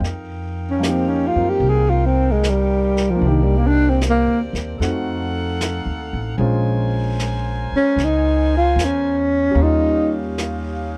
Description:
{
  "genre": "jazz ballad",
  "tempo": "76 BPM",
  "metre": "4/4",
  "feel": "swing 69% on 8ths",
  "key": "F minor",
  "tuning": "A4 = 441 Hz",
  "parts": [
    { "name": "warm grand piano", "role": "accompaniment", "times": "0.0-11.0 s", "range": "F3 to C5", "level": "-28 LUFS", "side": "equal", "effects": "none" },
    { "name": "clear saxophone section", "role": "sustained chords", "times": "0.0-11.0 s", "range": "C4 to Ab5", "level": "-33 LUFS", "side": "equal", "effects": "none" },
    { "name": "upright bass", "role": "bass", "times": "0.0-11.0 s", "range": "A1 to Gb2", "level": "-23 LUFS", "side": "equal", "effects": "none" },
    { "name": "jazz brush drum kit", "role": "drums", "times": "0.0-11.0 s", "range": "brushed snare drum, hi-hat, snare drum", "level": "-31 LUFS", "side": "equal", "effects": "none" },
    { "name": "breathy tenor saxophone", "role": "melody", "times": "0.7-10.1 s", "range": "Eb3 to Ab4", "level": "-20 LUFS", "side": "equal", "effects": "none" }
  ],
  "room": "little or no reverb",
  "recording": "dry, close 1970s-style studio recording",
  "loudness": "-19 LUFS",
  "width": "mono",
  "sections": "0.0-11.0 A section",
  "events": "tenor saxophone solo 0.0-11.0",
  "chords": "0.0 F9sus4; 3.2 Cm9; 4.8 F7b9; 6.4 Bbm9; 9.6 Eb9",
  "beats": "| 0.02 0.82 1.62 2.42 | 3.21 4.01 4.80 5.60 | 6.39 7.18 7.97 8.77 | 9.56 10.36"
}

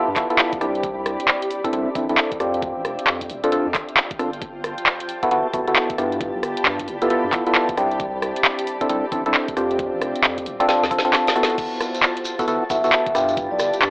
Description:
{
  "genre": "UK garage, two-step garage",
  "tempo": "134 BPM",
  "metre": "4/4",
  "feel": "swing 63% on 16ths",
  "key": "G major",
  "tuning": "A4 = 440 Hz",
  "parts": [
    { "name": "percussive organ stab", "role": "stabs", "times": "0.0-13.9 s", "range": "B3 to A4", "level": "-21 LUFS", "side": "equal", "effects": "chorus, phaser, analog delay" },
    { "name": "granular cloud pad", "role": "texture", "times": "0.0-13.9 s", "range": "C4 to B5", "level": "-30 LUFS", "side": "equal", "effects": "built-in reverb, sidechain pumping" },
    { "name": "saturated sub bass", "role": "bass", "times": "0.1-13.9 s", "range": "D1 to G2", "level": "-32 LUFS", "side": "equal", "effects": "sidechain pumping" },
    { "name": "electronic kick drum", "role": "drums", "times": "0.2-13.5 s", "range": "none", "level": "-35 LUFS", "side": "equal", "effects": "none" },
    { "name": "garage drum kit", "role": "drums", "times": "0.2-13.9 s", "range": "crash cymbal, handclaps, hi-hat, rim click, snare drum", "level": "-20 LUFS", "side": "equal", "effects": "none" },
    { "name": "maracas", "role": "percussion", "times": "11.6-13.9 s", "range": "none", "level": "-34 LUFS", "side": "equal", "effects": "none" },
    { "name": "vibraphone with soft mallets", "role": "melody", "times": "12.7-13.7 s", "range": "D5 to E5", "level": "-21 LUFS", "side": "equal", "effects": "none" }
  ],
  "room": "light reverb",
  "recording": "dry, gritty hardware recording, transformer saturation, cassette tape, AM radio sound",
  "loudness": "-18 LUFS",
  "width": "side -24 dB against mid",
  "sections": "0.0-13.9 A section",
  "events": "filter sweep on synth stab 0.0-13.9; drum fill 10.7-11.6",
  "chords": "0.0 G13; 0.8 C69; 2.4 F6; 4.4 Gmaj13; 6.0 G13; 8.0 C69; 9.6 F6; 11.6 Gmaj13; 13.1 G13",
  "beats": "0.39 | 0.83 1.28 1.73 2.18 | 2.63 3.07 3.52 3.97 | 4.42 4.86 5.31 5.76 | 6.21 6.66 7.10 7.55 | 8.00 8.45 8.89 9.34 | 9.79 10.24 10.69 11.13 | 11.58 12.03 12.48 12.92 | 13.37 13.82"
}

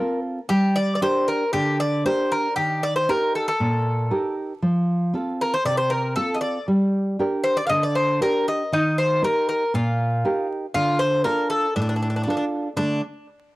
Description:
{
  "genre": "greek folk, Greek bouzouki band",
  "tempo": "117 BPM",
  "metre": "4/4",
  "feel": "straight",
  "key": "D phrygian",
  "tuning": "A4 = 440 Hz",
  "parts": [
    { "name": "Greek bouzouki", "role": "melody", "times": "0.0-13.0 s", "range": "D4 to F5", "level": "-22 LUFS", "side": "left 1 dB", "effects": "none" },
    { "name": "nylon-string guitar", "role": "accompaniment", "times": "0.0-13.0 s", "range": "A2 to Bb4", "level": "-23 LUFS", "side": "right 1 dB", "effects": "none" }
  ],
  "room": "light reverb",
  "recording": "dry, gritty hardware recording, transformer saturation, vinyl crackle",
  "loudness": "-20 LUFS",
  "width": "side -19 dB against mid",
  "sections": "0.0-12.8 A section",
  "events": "speeding up 0.0-13.6",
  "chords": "0.5 Gm; 2.6 Eb; 4.6 F; 6.7 Gm; 8.7 Eb; 10.8 Dm; 12.8 D5",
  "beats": "| 0.49 1.01 1.53 2.04 | 2.56 3.08 3.60 4.11 | 4.63 5.14 5.65 6.17 | 6.68 7.19 7.70 8.21 | 8.72 9.23 9.74 10.24 | 10.75 11.26 11.76 12.27 | 12.77"
}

